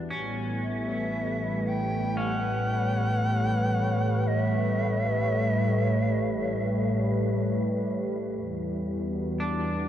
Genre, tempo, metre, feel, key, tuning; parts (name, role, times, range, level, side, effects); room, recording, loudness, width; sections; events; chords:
ambient; 58 BPM; 4/4; straight; A4 = 440 Hz
warm analog pad; sustained chords; 0.0-9.9 s; A2 to D5; -27 LUFS; equal; chorus
electric guitar at the edge of break-up; arpeggios; 0.0-9.9 s; C#4 to D4; -37 LUFS; equal; tape echo
dark studio double bass section; bass; 0.0-9.9 s; A1 to E2; -31 LUFS; equal
analog drone; drone; 0.0-9.9 s; E3 to B3; -39 LUFS; equal
bright reedy shakuhachi; melody; 0.6-7.4 s; E5 to G5; -32 LUFS; equal; tape echo
wet huge ambient reverb, RT60 8.2 s; worn, warbling old tape, cassette tape, warbly pitch drift; -25 LUFS; side -10 dB against mid
0.0-8.4 A section; 8.4-9.9 B section
fade-in on double bass section 0.0-8.4; fade-out on synth drone 0.0-8.4
0.1 A7; 8.4 Em9